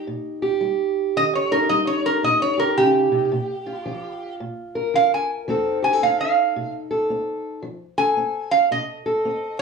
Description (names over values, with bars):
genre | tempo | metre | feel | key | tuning
acoustic country blues, solo or duo | 111 BPM | 4/4 | swing 63% on 8ths | unclear | A4 = 439 Hz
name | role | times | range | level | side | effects
metal-body resonator slide guitar | melody | 0.0-9.6 s | G4 to Ab5 | -19 LUFS | right 2 dB | none
fingerpicked steel-string acoustic guitar | accompaniment | 0.0-9.6 s | Bb2 to Bb4 | -23 LUFS | right 1 dB | none
room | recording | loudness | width
wet booth ambience, RT60 0.2 s | studio reverb | -19 LUFS | side -5 dB against mid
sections
0.0-9.6 A section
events
resonator guitar played with a steel bar solo 0.0-9.6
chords
0.0 Eb; 3.3 Bb5; 5.5 F7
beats
0.07 0.61 | 1.15 1.69 2.23 2.77 | 3.31 3.85 4.39 4.93 | 5.46 6.00 6.54 7.08 | 7.62 8.16 8.70 9.24